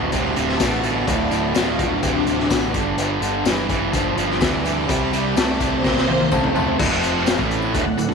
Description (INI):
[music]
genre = classic rock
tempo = 126 BPM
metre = 4/4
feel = straight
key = unclear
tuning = A4 = 440 Hz
[part]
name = cranked stack guitar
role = riff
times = 0.0-8.1 s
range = D2 to Bb3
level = -22 LUFS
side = right 11 dB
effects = overdrive
[part]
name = overdriven electric guitar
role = riff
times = 0.0-8.1 s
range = D2 to Bb3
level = -24 LUFS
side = left 12 dB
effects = none
[part]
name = growling picked electric bass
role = bass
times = 0.0-8.1 s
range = D1 to D2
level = -28 LUFS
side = equal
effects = overdrive
[part]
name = string machine, full ensemble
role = sustained chords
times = 0.1-8.1 s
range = C4 to D6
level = -26 LUFS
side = left 1 dB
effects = ensemble chorus
[part]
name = raw garage drum kit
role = drums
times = 0.1-8.1 s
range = crash cymbal, hi-hat, kick drum, snare drum, tambourine, toms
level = -23 LUFS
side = left 4 dB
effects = none
[part]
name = tambourine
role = percussion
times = 0.1-8.1 s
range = none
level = -43 LUFS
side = left 12 dB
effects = none
[sound]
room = moderate echo chamber reverb, RT60 2.1 s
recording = 1960s-style stereo with parts hard left and right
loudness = -17 LUFS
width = side -5 dB against mid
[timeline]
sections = 0.0-6.8 A section; 6.8-8.1 B section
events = string machine solo 0.0-6.8; drum fill 5.8-6.8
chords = 0.0 D5; 2.7 G5; 4.9 C5; 6.8 D5; 6.9 F5; 7.4 D